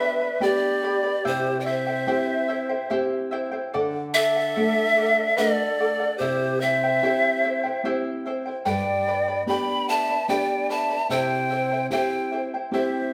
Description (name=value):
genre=andean folk, Andean ensemble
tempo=73 BPM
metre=3/4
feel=straight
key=unclear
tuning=A4 = 440 Hz
part: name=breathy pan flute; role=melody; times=0.0-13.1 s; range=C5 to B5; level=-26 LUFS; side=equal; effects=none
part: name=breathy large quena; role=second line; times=0.0-13.1 s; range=G4 to G5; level=-32 LUFS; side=equal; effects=none
part: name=charango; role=accompaniment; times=0.0-13.1 s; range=E4 to B5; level=-30 LUFS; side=equal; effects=none
part: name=nylon-string guitar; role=accompaniment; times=0.0-13.1 s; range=G2 to G4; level=-32 LUFS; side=equal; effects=none
room=wet stone room reverb, RT60 1.1 s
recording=band playing live in one room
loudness=-24 LUFS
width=mono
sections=0.0-13.1 A section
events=speeding up 0.0-13.1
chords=0.0 G; 1.3 C; 3.7 D; 6.2 C; 8.7 G; 11.1 C